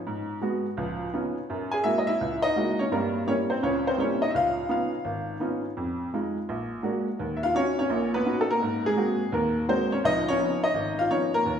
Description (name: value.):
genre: jazz.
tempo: 168 BPM.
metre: 4/4.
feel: swing 64% on 8ths.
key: Db mixolydian.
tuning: A4 = 439 Hz.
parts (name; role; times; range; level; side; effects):
clear upright piano; solo; 0.1-11.6 s; Ab1 to Ab5; -24 LUFS; equal; none.
room: wet recital hall reverb, RT60 1.6 s.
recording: recorded in a church or concert hall.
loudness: -24 LUFS.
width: side -8 dB against mid.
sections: 0.0-11.6 A section.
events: none.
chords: 0.1 Abm7; 0.8 Db9; 1.5 Gb9; 2.9 Gdim7; 4.3 Db9; 5.8 Fm7; 6.5 Bbaug7; 7.2 Ebm7; 8.6 Ab9; 10.0 Db9.